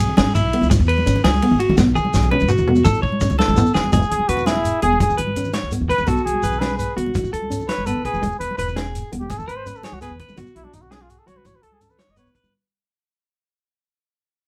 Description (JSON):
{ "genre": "highlife guitar band", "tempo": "112 BPM (dotted quarters)", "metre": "12/8", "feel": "straight", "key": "E major", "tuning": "A4 = 440 Hz", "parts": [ { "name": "clean electric guitar", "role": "arpeggios", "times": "0.0-12.5 s", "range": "E4 to C#5", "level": "-26 LUFS", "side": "equal", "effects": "none" }, { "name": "upright bass", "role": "bass", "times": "0.0-12.5 s", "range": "E1 to B2", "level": "-25 LUFS", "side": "equal", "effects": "none" }, { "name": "warm soul drum kit", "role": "drums", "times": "0.0-12.4 s", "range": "hi-hat, kick drum, ride cymbal, snare drum, toms", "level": "-27 LUFS", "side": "equal", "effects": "none" }, { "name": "congas", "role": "percussion", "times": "0.1-12.5 s", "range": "none", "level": "-28 LUFS", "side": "equal", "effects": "none" }, { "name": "nylon-string guitar", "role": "accompaniment", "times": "0.2-12.4 s", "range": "F#3 to C#4", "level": "-25 LUFS", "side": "equal", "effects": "none" }, { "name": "shekere", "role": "percussion", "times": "0.3-12.5 s", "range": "none", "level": "-27 LUFS", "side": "equal", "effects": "none" }, { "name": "warm trumpet", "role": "melody", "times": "4.1-12.3 s", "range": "D4 to D#5", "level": "-25 LUFS", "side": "equal", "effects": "none" } ], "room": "moderate studio reverb, RT60 0.6 s", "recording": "band playing live in one room", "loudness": "-19 LUFS", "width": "mono", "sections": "0.0-3.9 A section; 3.9-12.5 B section", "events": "drum fill 1.8-3.9; fade-out 3.9-12.5; trumpet solo 3.9-12.5", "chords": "0.0 E; 1.8 B5; 2.9 A; 3.9 E; 6.1 B5; 7.1 A; 8.2 E; 10.4 B5; 11.5 A" }